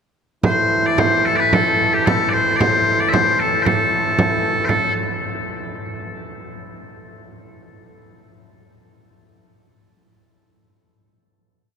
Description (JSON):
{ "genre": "medieval dance", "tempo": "113 BPM", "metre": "2/4", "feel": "uneven beats", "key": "A minor", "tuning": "A4 = 440 Hz", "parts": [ { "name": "loud bright bagpipes", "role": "melody", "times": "0.4-4.9 s", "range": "G4 to E5", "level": "-18 LUFS", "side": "left 2 dB", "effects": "none" }, { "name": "hand-pumped harmonium", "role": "drone", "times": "0.4-4.7 s", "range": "A2 to E3", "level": "-25 LUFS", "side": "right 1 dB", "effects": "none" }, { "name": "frame drum", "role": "percussion", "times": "0.4-4.9 s", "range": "none", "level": "-22 LUFS", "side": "right 2 dB", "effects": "none" } ], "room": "wet cathedral reverb, RT60 7.5 s", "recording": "none", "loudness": "-15 LUFS", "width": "side -6 dB against mid", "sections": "0.4-4.7 A section; 4.7-5.7 final note", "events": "speeding up 0.4-5.7", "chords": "none" }